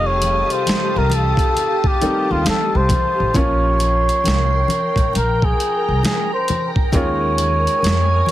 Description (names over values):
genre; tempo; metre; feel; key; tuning
R&B, neo-soul; 67 BPM; 4/4; swing 63% on 16ths; Bb dorian; A4 = 439 Hz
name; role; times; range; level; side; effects
trumpet with cup mute; melody; 0.0-8.3 s; F4 to Db5; -19 LUFS; equal; none
clear grand piano; accompaniment; 0.0-8.3 s; C3 to Ab4; -26 LUFS; equal; none
soft string machine; sustained chords; 0.0-8.3 s; G4 to Eb6; -25 LUFS; left 1 dB; ensemble chorus
upright bass; bass; 0.0-8.2 s; F1 to F2; -20 LUFS; equal; none
boom bap sampler-style drum kit; drums; 0.2-8.3 s; hi-hat, kick drum, snare drum; -21 LUFS; equal; none
congas; percussion; 0.2-8.3 s; none; -28 LUFS; left 2 dB; none
room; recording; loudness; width
little or no reverb; heavily compressed radio sound; -15 LUFS; side -13 dB against mid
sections
0.0-3.3 A section; 3.3-8.3 B section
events
muted trumpet solo 0.0-3.3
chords
0.0 F9; 3.3 Bbm69; 6.9 Db69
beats
0.66 1.56 2.45 | 3.35 4.24 5.14 6.03 | 6.93 7.83